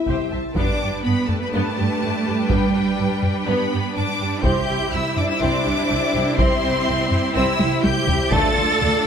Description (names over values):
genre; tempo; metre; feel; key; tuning
cinematic, epic orchestral film score; 124 BPM; 4/4; straight; unclear; A4 = 440 Hz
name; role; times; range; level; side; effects
rich symphonic violin section; melody; 0.0-9.1 s; G5 to A6; -26 LUFS; left 2 dB; none
dark symphonic violin section; second line; 0.0-9.1 s; A3 to E5; -27 LUFS; left 3 dB; none
dark French horn section; sustained chords; 0.0-8.5 s; F3 to E4; -30 LUFS; left 4 dB; none
rich symphonic viola section; accompaniment; 0.1-9.1 s; G3 to E5; -28 LUFS; right 2 dB; none
rich symphonic cello section; bass; 0.1-9.1 s; C2 to A4; -25 LUFS; right 3 dB; none
rich symphonic double bass section; bass; 0.1-8.9 s; C2 to G2; -26 LUFS; right 3 dB; none
taiko ensemble; drums; 0.1-8.8 s; none; -24 LUFS; equal; none
rich symphonic string section; sustained chords; 0.6-9.1 s; G3 to C5; -27 LUFS; left 1 dB; none
dark trumpet section; stabs; 0.6-8.5 s; A4 to C5; -30 LUFS; right 3 dB; none
room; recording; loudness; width
moderate scoring stage reverb, RT60 1.9 s; none; -18 LUFS; side -7 dB against mid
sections
0.6-9.1 A section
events
drum fill 7.6-8.3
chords
0.0 C; 0.6 G; 4.4 C; 8.3 Dm